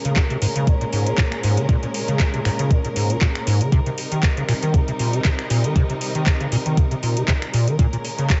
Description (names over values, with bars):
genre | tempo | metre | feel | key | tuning
acid house | 118 BPM | 4/4 | swing 55% on 16ths | C phrygian | A4 = 440 Hz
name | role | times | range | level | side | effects
clear studio string section | sustained chords | 0.0-8.4 s | Bb2 to Bb4 | -29 LUFS | equal | vintage 12-bit sampler grit, sidechain pumping
acid bass, square | riff | 0.0-8.3 s | Ab2 to Eb3 | -24 LUFS | equal | overdrive, analog chorus, digital delay
booming analog drum machine | drums | 0.0-8.4 s | finger snaps, handclaps, hi-hat | -29 LUFS | equal | none
electronic kick drum | drums | 0.2-8.4 s | none | -20 LUFS | equal | overdrive
room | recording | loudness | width
light reverb | nothing above 7.8 kHz | -20 LUFS | mono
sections
0.0-8.4 A section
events
none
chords
0.0 Bbm7; 3.7 Cm7; 7.8 Bbm7